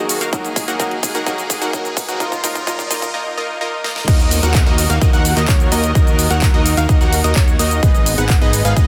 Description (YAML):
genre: EDM, festival progressive house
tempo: 128 BPM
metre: 4/4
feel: straight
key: Eb minor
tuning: A4 = 440 Hz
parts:
  - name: dark baby grand piano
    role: accompaniment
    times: 0.0-3.0 s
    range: Eb3 to Ab4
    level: -30 LUFS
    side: equal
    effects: sidechain pumping, digital delay
  - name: clear studio string section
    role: sustained chords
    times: 0.0-8.9 s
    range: Eb2 to Bb4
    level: -30 LUFS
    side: equal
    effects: sidechain pumping
  - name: supersaw stab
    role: riff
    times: 0.0-8.9 s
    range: Bb3 to Gb5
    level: -24 LUFS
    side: equal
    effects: sidechain pumping, digital delay
  - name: riser, swell and downlifter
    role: sound effects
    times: 0.4-7.8 s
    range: none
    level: -33 LUFS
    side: equal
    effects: none
  - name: big-room dance drum kit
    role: drums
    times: 0.1-8.9 s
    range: cabasa, crash cymbal, handclaps, hi-hat, snare drum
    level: -25 LUFS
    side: equal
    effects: none
  - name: electronic kick drum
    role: drums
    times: 0.3-8.9 s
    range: none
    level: -17 LUFS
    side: equal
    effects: none
  - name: unison lead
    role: arpeggios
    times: 4.1-8.9 s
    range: Db5 to Gb5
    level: -25 LUFS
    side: equal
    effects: sidechain pumping, digital delay
  - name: fat analog bass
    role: bass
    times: 4.1-8.9 s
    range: Ab1 to Eb2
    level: -21 LUFS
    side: equal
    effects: sidechain pumping
room: light reverb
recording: dense, heavily limited modern master, high-pass filter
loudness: -16 LUFS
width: mono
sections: 0.0-4.1 A section; 4.1-8.9 B section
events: build-up 0.0-4.1; drum fill 0.0-3.1, 3.8; riser 0.4-3.1; drop 4.1-8.9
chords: 0.3 Ab5; 2.2 Dbadd9; 4.1 Ebm; 7.8 Abm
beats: | 0.33 0.80 1.27 1.73 | 2.20 2.67 3.14 3.61 | 4.08 4.55 5.02 5.48 | 5.95 6.42 6.89 7.36 | 7.83 8.30 8.77